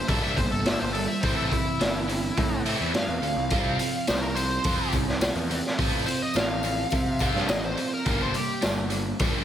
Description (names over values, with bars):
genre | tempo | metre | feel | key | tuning
indie rock | 106 BPM | 4/4 | straight | C mixolydian | A4 = 438 Hz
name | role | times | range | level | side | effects
smooth overdriven lead guitar | melody | 0.0-8.6 s | E4 to F5 | -30 LUFS | left 1 dB | slapback echo
biting overdriven guitar | riff | 0.0-9.4 s | E3 to F4 | -29 LUFS | right 2 dB | none
fuzz picked electric bass | bass | 0.1-9.3 s | G1 to C3 | -31 LUFS | equal | overdrive
raw garage drum kit | drums | 0.1-9.3 s | hi-hat, kick drum, snare drum | -27 LUFS | equal | none
tambourine | percussion | 3.8-9.3 s | none | -43 LUFS | left 11 dB | none
room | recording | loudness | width
moderate lush hall reverb, RT60 1.7 s, small room ambience | big arena sound | -23 LUFS | side -10 dB against mid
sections
0.0-9.4 A section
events
lead electric guitar solo 0.0-9.4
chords
0.0 Gm; 1.2 Am7; 3.5 Csus4; 8.1 Gm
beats
0.10 0.67 | 1.24 1.81 2.38 2.95 | 3.52 4.08 4.65 5.22 | 5.79 6.36 6.93 7.50 | 8.06 8.63 9.20